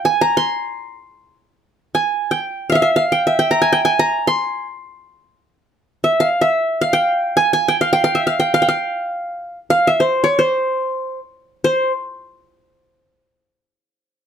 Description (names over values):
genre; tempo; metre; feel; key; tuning
Arabic maqam ensemble; free time; none; none; C maqam hijaz; A4 = 440 Hz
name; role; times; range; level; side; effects
qanun; solo; 0.0-11.9 s; C5 to C6; -15 LUFS; right 1 dB; none
room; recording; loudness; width
light reverb; none; -15 LUFS; side -8 dB against mid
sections
0.0-11.6 A section; 11.6-13.9 B section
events
none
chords
none